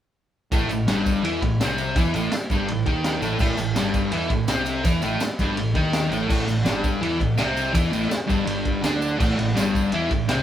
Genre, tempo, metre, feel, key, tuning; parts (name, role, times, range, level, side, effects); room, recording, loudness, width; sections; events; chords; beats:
garage rock duo or trio; 166 BPM; 4/4; straight; A4 = 443 Hz
fuzz guitar; riff; 0.5-10.4 s; G2 to E4; -22 LUFS; equal; distortion
fuzz fingered electric bass; bass; 0.5-10.4 s; G1 to E2; -31 LUFS; equal; overdrive
crunchy breakbeat drum kit; drums; 0.5-10.4 s; crash cymbal, kick drum, ride cymbal, snare drum; -25 LUFS; equal
tambourine; percussion; 0.5-10.4 s; -42 LUFS; right 4 dB
wet studio reverb, RT60 0.5 s; band playing live in one room; -20 LUFS; side -10 dB against mid
0.5-10.4 A section
0.5 A5
| 0.52 0.88 1.24 1.60 | 1.96 2.32 2.68 3.04 | 3.40 3.76 4.12 4.49 | 4.85 5.21 5.57 5.93 | 6.29 6.66 7.02 7.38 | 7.75 8.11 8.47 8.84 | 9.20 9.57 9.93 10.30